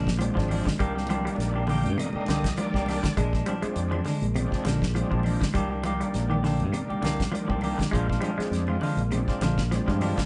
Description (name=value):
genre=afrobeat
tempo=101 BPM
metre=4/4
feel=swing 54% on 16ths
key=Bb mixolydian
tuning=A4 = 440 Hz
part: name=clean electric guitar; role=arpeggios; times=0.0-10.3 s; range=C3 to Ab3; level=-33 LUFS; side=equal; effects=none
part: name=semi-hollow electric guitar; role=stabs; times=0.0-10.2 s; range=Eb3 to G4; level=-35 LUFS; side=equal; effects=none
part: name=fingered electric bass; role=bass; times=0.0-10.1 s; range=Ab1 to G2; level=-31 LUFS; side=equal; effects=none
part: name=damped 70s drum kit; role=drums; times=0.1-10.3 s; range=hi-hat, kick drum, snare drum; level=-33 LUFS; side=equal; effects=none
part: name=overdriven tonewheel organ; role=accompaniment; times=0.2-10.2 s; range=D3 to G5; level=-36 LUFS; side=equal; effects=slow rotary speaker, chorus vibrato
part: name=claves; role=percussion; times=0.2-10.2 s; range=none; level=-49 LUFS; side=equal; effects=none
part: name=congas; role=percussion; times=0.2-10.3 s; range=none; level=-37 LUFS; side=equal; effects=none
room=moderate large studio reverb, RT60 1.3 s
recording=band playing live in one room, nothing above 10.4 kHz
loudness=-26 LUFS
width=mono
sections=0.0-10.3 A section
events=tonewheel organ fill 1.4-3.2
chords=0.0 Bb7; 0.8 Cm9; 3.2 Bb7; 5.5 Cm9; 7.9 Bb7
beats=0.20 | 0.80 1.39 1.98 2.58 | 3.17 3.76 4.35 4.95 | 5.54 6.14 6.73 7.33 | 7.92 8.52 9.12 9.72